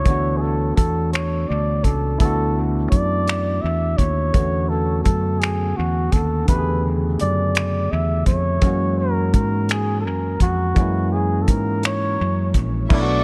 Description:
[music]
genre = slow six-eight R&B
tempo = 56 BPM (dotted quarters)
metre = 6/8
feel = straight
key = unclear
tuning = A4 = 439 Hz
[part]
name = breathy flugelhorn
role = melody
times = 0.0-13.2 s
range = F#4 to E5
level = -27 LUFS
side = equal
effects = dub echo
[part]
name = barky tine electric piano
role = accompaniment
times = 0.0-13.2 s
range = C#3 to G#4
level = -28 LUFS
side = equal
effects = dub echo
[part]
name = fingered electric bass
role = bass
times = 0.1-13.2 s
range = A#1 to G#2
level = -24 LUFS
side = equal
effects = none
[part]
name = warm soul drum kit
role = drums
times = 0.1-13.1 s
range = crash cymbal, finger snaps, hi-hat, kick drum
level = -21 LUFS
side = equal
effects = vintage 12-bit sampler grit
[part]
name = warm studio string section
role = sustained chords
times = 12.9-13.2 s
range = A4 to C#6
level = -32 LUFS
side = equal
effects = none
[sound]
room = little or no reverb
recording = echo-heavy mix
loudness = -20 LUFS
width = mono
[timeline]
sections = 0.0-12.9 A section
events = none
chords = 0.0 Bm11; 4.3 E13sus4; 8.6 F#9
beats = | 0.05 1.12 | 2.19 3.26 | 4.33 5.40 | 6.48 7.55 | 8.62 9.69 | 10.76 11.83 | 12.90

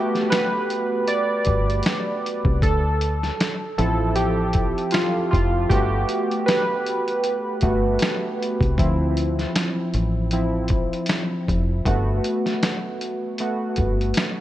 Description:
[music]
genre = lo-fi hip hop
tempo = 78 BPM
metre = 4/4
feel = swing 55% on 16ths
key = G mixolydian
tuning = A4 = 439 Hz
[part]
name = warm analog keys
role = accompaniment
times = 0.0-14.4 s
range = F3 to D5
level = -22 LUFS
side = right 1 dB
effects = chorus, cassette tape, low-pass filter, dub echo
[part]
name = lo-fi sampler-style drum kit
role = drums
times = 0.1-14.4 s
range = finger snaps, hi-hat, kick drum, snare drum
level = -24 LUFS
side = equal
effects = vintage 12-bit sampler grit
[part]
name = deep dub fingered electric bass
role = bass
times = 1.5-14.1 s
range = F1 to D2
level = -23 LUFS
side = equal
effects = none
[sound]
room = light reverb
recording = echo-heavy mix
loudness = -20 LUFS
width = side -13 dB against mid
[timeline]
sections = 0.0-14.4 A section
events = synth keys solo 0.0-14.4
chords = 0.0 Gmaj7; 2.6 Dm7; 5.7 Gmaj7; 8.8 Dm7; 11.9 Gmaj7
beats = 0.32 1.09 1.86 | 2.63 3.40 4.17 4.93 | 5.70 6.47 7.24 8.01 | 8.78 9.55 10.32 11.09 | 11.86 12.63 13.39 14.16

